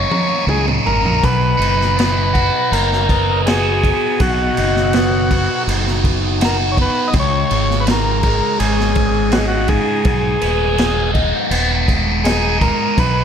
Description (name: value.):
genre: psychedelic rock.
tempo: 82 BPM.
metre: 4/4.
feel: straight.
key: unclear.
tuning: A4 = 441 Hz.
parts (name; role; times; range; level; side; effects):
overdriven combo organ; melody; 0.0-13.2 s; F#4 to D#5; -19 LUFS; left 1 dB; slapback echo.
biting overdriven guitar; riff; 0.0-13.2 s; C#2 to F#4; -18 LUFS; equal; phaser.
fingered electric bass; bass; 0.0-13.2 s; D#1 to C#2; -19 LUFS; equal; none.
vintage drum kit; drums; 0.1-13.1 s; crash cymbal, kick drum, snare drum, toms; -20 LUFS; equal; none.
room: light reverb.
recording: none.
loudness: -13 LUFS.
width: side -8 dB against mid.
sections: 0.0-1.2 A section; 1.2-13.2 B section.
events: drum fill 0.0-1.2.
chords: 0.0 F#6; 1.2 B; 7.1 C#5; 10.1 G#m.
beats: 0.49 | 1.23 1.97 2.71 3.45 | 4.19 4.93 5.67 6.40 | 7.13 7.87 8.60 9.33 | 10.06 10.79 11.52 12.25 | 12.97.